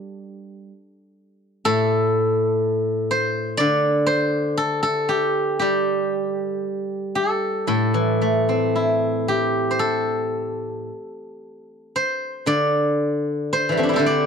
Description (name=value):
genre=chinese traditional, Chinese solo plucked strings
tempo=54-64 BPM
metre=4/4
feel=rubato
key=D shang mode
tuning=A4 = 440 Hz
part: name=steel-string zither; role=solo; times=0.0-14.3 s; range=A2 to D5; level=-19 LUFS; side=equal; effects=none
room=light reverb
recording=dry, close 1970s-style studio recording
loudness=-19 LUFS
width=side -6 dB against mid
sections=0.0-14.3 A section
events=none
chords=none